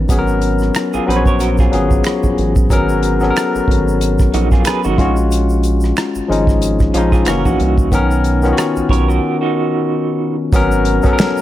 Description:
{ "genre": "R&B, neo-soul", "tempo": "92 BPM", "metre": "4/4", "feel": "swing 57% on 16ths", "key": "G# dorian", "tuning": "A4 = 440 Hz", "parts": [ { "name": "barky tine electric piano", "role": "accompaniment", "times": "0.0-11.4 s", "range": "D#3 to C#5", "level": "-16 LUFS", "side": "left 3 dB", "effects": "overdrive" }, { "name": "rubbery square bass", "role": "bass", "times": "0.0-11.1 s", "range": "F#1 to B#1", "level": "-17 LUFS", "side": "right 1 dB", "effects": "none" }, { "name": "warm soul drum kit", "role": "drums", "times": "0.1-11.4 s", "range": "hi-hat, kick drum, rim click, snare drum", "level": "-16 LUFS", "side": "right 1 dB", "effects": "none" }, { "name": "egg shaker and finger snaps", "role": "percussion", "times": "0.1-11.4 s", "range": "none", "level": "-30 LUFS", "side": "right 5 dB", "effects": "none" }, { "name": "electric guitar through a small old amp", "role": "second line", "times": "0.9-10.4 s", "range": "C#4 to C#5", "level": "-21 LUFS", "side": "right 6 dB", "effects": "tremolo" } ], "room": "small room ambience", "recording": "none", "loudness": "-12 LUFS", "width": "side -13 dB against mid", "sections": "0.0-10.5 A section", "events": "break 9.2-10.5", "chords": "0.1 G#m11; 5.0 D#m11/A#; 7.3 F#7; 7.9 Bmaj9; 10.5 G#m11" }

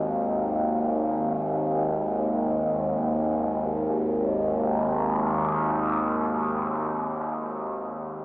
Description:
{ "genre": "ambient", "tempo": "free time", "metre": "none", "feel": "none", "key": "unclear", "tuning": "A4 = 439 Hz", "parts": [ { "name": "overtone-sweeping drone", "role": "solo", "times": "0.0-7.2 s", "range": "G#1 to D#2", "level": "-24 LUFS", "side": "equal", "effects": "chorus, built-in reverb, tape echo" } ], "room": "wet huge ambient reverb, RT60 7.6 s", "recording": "small speaker sound", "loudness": "-23 LUFS", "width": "side -23 dB against mid", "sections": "0.0-3.7 A section; 3.7-8.1 B section", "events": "none", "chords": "0.0 G#5" }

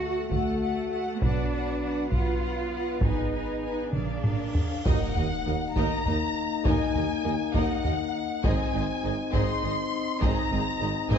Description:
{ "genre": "cinematic, epic orchestral film score", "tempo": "67 BPM (dotted quarters)", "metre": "6/8", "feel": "straight", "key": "Eb dorian from 4.9 s", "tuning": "A4 = 437 Hz", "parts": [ { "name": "warm symphonic violin section", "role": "melody", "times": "0.0-11.2 s", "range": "F5 to C6", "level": "-34 LUFS", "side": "left 4 dB", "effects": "none" }, { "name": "warm symphonic violin section", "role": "second line", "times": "0.0-11.2 s", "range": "Ab4 to F#5", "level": "-38 LUFS", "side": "left 3 dB", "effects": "none" }, { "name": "rich symphonic viola section", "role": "accompaniment", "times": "0.0-11.2 s", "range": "Bb3 to B4", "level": "-36 LUFS", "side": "right 1 dB", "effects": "none" }, { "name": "mellow French horn section", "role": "sustained chords", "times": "0.0-11.2 s", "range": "F#3 to Ab4", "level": "-32 LUFS", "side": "left 6 dB", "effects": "none" }, { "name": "rich symphonic cello section", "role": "bass", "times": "0.0-11.2 s", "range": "Eb2 to F#4", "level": "-34 LUFS", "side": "right 3 dB", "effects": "none" }, { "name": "rich symphonic double bass section", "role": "bass", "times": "0.0-11.2 s", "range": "Ab1 to Eb2", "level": "-33 LUFS", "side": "right 4 dB", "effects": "none" }, { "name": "solo taiko drums", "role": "drums", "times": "0.3-11.2 s", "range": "none", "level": "-28 LUFS", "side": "equal", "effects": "none" }, { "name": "cymbal swell and impact", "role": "sound effects", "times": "4.4-6.7 s", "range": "none", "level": "-38 LUFS", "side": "equal", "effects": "none" }, { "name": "clear tuba", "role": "bass", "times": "4.9-11.2 s", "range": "Ab1 to Eb2", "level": "-36 LUFS", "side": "right 5 dB", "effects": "none" } ], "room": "moderate scoring stage reverb, RT60 2.0 s", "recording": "dark, warm production, nothing above 7.7 kHz", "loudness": "-25 LUFS", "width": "side -7 dB against mid", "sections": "0.0-4.9 A section; 4.9-11.2 B section", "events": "drum fill 3.9-4.9; cymbal swell 4.4-4.9; impact 4.9-6.7", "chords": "0.0 D; 1.2 Bm; 3.0 Abm; 3.9 Bb7; 4.9 Ebm; 8.4 Ab" }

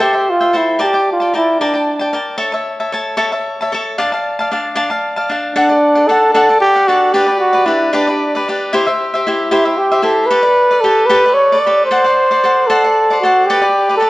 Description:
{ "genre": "mexican folk", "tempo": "76 BPM (dotted quarters)", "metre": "6/8", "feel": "straight", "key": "D minor, D major from 5.6 s", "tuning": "A4 = 440 Hz", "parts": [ { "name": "dark trumpet", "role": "melody", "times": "0.0-2.2, 5.6-14.1 s", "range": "D4 to D5", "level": "-11 LUFS", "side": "equal", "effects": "none" }, { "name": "cavaquinho", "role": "accompaniment", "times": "0.0-14.1 s", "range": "D4 to A5", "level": "-16 LUFS", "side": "left 1 dB", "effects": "none" } ], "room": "moderate recital hall reverb, RT60 1.4 s", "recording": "worn, warbling old tape, cassette tape, warbly pitch drift", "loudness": "-11 LUFS", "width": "side -19 dB against mid", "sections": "0.0-5.6 A section; 5.6-14.1 B section", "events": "none", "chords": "0.0 Am7; 0.8 Gmadd9; 2.4 A; 4.0 Dm; 5.6 D; 7.2 G; 8.7 C; 10.3 Gadd9; 11.9 D7; 13.5 Gadd9" }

